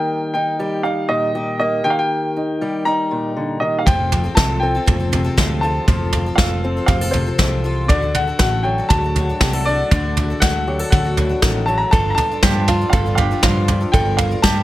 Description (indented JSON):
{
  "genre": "indie folk with a building arrangement",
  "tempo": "119 BPM",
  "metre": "4/4",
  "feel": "straight",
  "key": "unclear",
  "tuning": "A4 = 443 Hz",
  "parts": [
    { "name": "clear upright piano", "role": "melody", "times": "0.0-14.6 s", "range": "C5 to Bb5", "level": "-21 LUFS", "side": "equal", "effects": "none" },
    { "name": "fingerpicked acoustic archtop guitar", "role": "accompaniment", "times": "0.0-14.6 s", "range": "G2 to Bb4", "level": "-24 LUFS", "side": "left 1 dB", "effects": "none" },
    { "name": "picked twelve-string acoustic guitar", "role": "accompaniment", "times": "3.9-14.6 s", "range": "G2 to Bb4", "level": "-28 LUFS", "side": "left 4 dB", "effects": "none" },
    { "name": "hollow-body short-scale picked electric bass", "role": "bass", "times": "3.9-14.6 s", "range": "F1 to G2", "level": "-21 LUFS", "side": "equal", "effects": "none" },
    { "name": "soft brush drum kit", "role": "drums", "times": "3.9-14.6 s", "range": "kick drum, snare drum, toms", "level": "-18 LUFS", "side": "equal", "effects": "none" },
    { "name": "open-back banjo", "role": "arpeggios", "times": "11.9-14.6 s", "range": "F4 to A4", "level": "-24 LUFS", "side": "right 5 dB", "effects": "digital delay" }
  ],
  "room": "light reverb",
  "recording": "none",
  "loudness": "-15 LUFS",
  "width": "side -15 dB against mid",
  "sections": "0.0-11.9 A section; 11.9-14.6 B section",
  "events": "none",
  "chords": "0.0 Eb; 3.9 F; 7.9 D; 11.9 Dm/G; 13.9 Gm7"
}